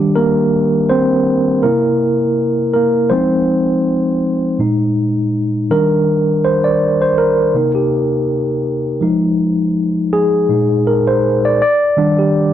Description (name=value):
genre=soul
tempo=81 BPM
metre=4/4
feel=swing 54% on 16ths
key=F dorian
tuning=A4 = 440 Hz
part: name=mellow tine electric piano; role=solo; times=0.0-12.5 s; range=Bb2 to D5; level=-12 LUFS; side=equal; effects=medium stereo tremolo
room=light reverb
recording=none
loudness=-12 LUFS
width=side -11 dB against mid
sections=0.0-4.6 A section; 4.6-12.5 B section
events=tine electric piano solo 0.0-4.6, 4.6-12.5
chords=0.0 Ebmaj7; 1.6 C7; 3.1 Fm7; 4.6 Bb7sus4; 5.7 Ebmaj7; 7.5 Cm7; 9.0 Fm7; 10.5 Bb7sus4; 11.6 Ebmaj7